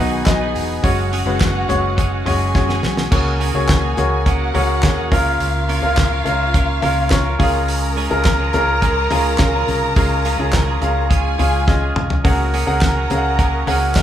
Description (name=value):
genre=piano-driven pop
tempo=105 BPM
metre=4/4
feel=straight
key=unclear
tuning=A4 = 439 Hz
part: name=dark studio violin section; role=second line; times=0.0-14.0 s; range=F4 to Bb5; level=-24 LUFS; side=equal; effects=none
part: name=warm baby grand piano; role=accompaniment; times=0.0-14.0 s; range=B2 to Gb5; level=-20 LUFS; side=left 2 dB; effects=none
part: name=twelve-string electric guitar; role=riff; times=0.0-14.0 s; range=B2 to B4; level=-26 LUFS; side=right 5 dB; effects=none
part: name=vintage muted fingered electric bass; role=bass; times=0.0-14.0 s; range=E1 to Eb2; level=-21 LUFS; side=equal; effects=none
part: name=damped 70s drum kit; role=drums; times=0.3-14.0 s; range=crash cymbal, handclaps, hi-hat, kick drum, snare drum, toms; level=-19 LUFS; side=equal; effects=none
room=moderate large studio reverb, RT60 1.1 s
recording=band playing live in one room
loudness=-15 LUFS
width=side -10 dB against mid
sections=0.0-3.1 A section; 3.1-14.0 A section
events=drum fill 2.5-3.1, 11.7-12.2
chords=0.0 B; 0.8 F#sus2; 3.1 Gbadd9/Db; 5.1 Bbm/Db; 7.4 Db; 12.2 Gbadd9/Db